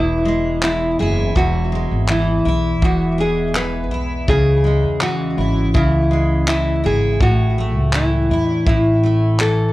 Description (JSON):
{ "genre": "acoustic pop", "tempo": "82 BPM", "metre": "4/4", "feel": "straight", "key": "unclear", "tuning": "A4 = 440 Hz", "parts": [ { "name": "nylon-string guitar", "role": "melody", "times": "0.0-9.7 s", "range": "E4 to B4", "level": "-20 LUFS", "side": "equal", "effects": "plate reverb, digital delay" }, { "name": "picked steel-string acoustic guitar", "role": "accompaniment", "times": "0.0-9.7 s", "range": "E2 to E4", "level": "-20 LUFS", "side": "equal", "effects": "double-tracked left and right" }, { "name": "upright bass", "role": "bass", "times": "0.0-9.7 s", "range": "E1 to E2", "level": "-20 LUFS", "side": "equal", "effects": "transformer saturation" }, { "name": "natural country drum kit", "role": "drums", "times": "0.6-9.6 s", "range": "handclaps, kick drum", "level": "-19 LUFS", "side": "equal", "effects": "none" } ], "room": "moderate studio reverb, RT60 0.6 s", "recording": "worn, warbling old tape, cassette tape, warbly pitch drift", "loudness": "-15 LUFS", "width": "side -17 dB against mid", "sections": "0.0-9.7 A section", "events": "none", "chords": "0.0 E; 4.3 C#m; 7.2 A" }